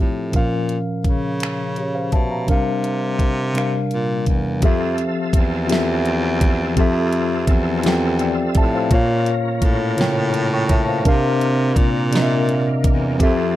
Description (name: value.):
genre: slow six-eight R&B.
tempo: 56 BPM (dotted quarters).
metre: 6/8.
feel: straight.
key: F major.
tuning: A4 = 440 Hz.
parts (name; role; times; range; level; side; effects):
mellow tine electric piano; accompaniment; 0.0-13.6 s; Bb2 to Db6; -19 LUFS; left 1 dB; slow stereo tremolo.
clear baritone saxophone; bass; 0.0-13.6 s; E2 to Db3; -23 LUFS; equal; none.
smooth R&B drum kit; drums; 0.3-13.4 s; finger snaps, hi-hat, kick drum, snare drum; -19 LUFS; equal; none.
tonewheel organ; sustained chords; 4.6-13.6 s; C3 to E5; -30 LUFS; right 1 dB; chorus vibrato, fast rotary speaker.
room: light reverb.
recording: dark, warm production.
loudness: -16 LUFS.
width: side -14 dB against mid.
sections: 0.0-4.6 A section; 4.6-13.6 B section.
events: none.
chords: 0.3 Bbm; 2.5 C9sus4; 4.6 Fmaj7; 8.9 Bbm; 11.1 C9sus4.